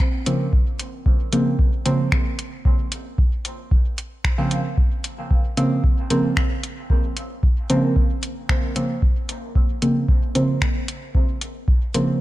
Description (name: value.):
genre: dub techno.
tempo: 113 BPM.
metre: 4/4.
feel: straight.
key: Bb minor.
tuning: A4 = 440 Hz.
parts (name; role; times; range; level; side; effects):
electronic kick drum; drums; 0.0-11.8 s; none; -19 LUFS; equal; none.
soft vintage rhythm box; drums; 0.0-12.1 s; finger snaps, hi-hat; -27 LUFS; equal; none.
deep mellow chord stab; stabs; 0.3-12.2 s; Db3 to C4; -23 LUFS; right 1 dB; chorus, phaser, sidechain pumping, dub echo.
room: light reverb, digital ambience.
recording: none.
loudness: -18 LUFS.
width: side -16 dB against mid.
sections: 0.0-12.2 A section.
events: none.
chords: 0.0 Bbmadd9.